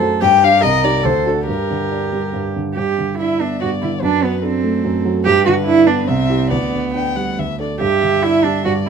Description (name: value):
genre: quick classical-period movement for piano trio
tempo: 143 BPM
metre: 3/4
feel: rubato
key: G major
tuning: A4 = 440 Hz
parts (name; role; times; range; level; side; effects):
- warm cello; second line; 0.0-8.9 s; B3 to Bb4; -17 LUFS; right 6 dB; none
- warm concert grand piano; accompaniment; 0.0-8.9 s; C2 to A4; -19 LUFS; right 2 dB; none
- dark violin; melody; 0.2-8.9 s; A4 to G5; -20 LUFS; left 9 dB; none
room: light reverb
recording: none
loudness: -14 LUFS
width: side -6 dB against mid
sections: 0.0-2.8 A section; 2.8-8.9 A section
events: none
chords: 0.2 G5; 0.6 Cm; 1.0 D7; 1.5 Gm; 2.8 G; 4.0 D7/F#; 5.3 G; 6.1 C; 6.5 G/D; 7.4 D5; 7.8 G5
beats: | 0.22 0.63 1.05 | 1.47 1.90 2.33 | 2.77 3.19 3.60 | 4.02 4.43 4.85 | 5.26 5.67 6.08 | 6.51 6.94 7.37 | 7.81 8.23 8.65